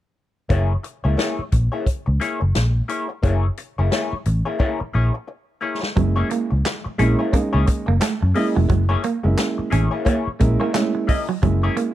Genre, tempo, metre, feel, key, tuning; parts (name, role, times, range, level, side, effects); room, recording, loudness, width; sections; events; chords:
funk; 88 BPM; 4/4; swing 60% on 16ths; F# mixolydian; A4 = 436 Hz
vintage hollow-body jazz guitar; accompaniment; 0.5-11.8 s; A#3 to D#5; -25 LUFS; left 4 dB; wah
vintage muted fingered electric bass; bass; 0.5-11.7 s; E#1 to F#2; -19 LUFS; equal
swinging big-band drum kit; drums; 0.5-11.9 s; handclaps, hi-hat, kick drum, snare drum; -22 LUFS; equal
semi-hollow electric guitar; riff; 6.0-11.9 s; F#3 to C#4; -25 LUFS; right 6 dB; spring reverb
dark upright piano; stabs; 6.0-11.9 s; G#3 to D#5; -23 LUFS; right 3 dB
small room ambience; dry, close 1970s-style studio recording; -18 LUFS; side -13 dB against mid
0.5-6.0 A section; 6.0-11.9 B section
drum fill 4.6-6.0; upright piano fill 10.1-11.4
0.5 F#9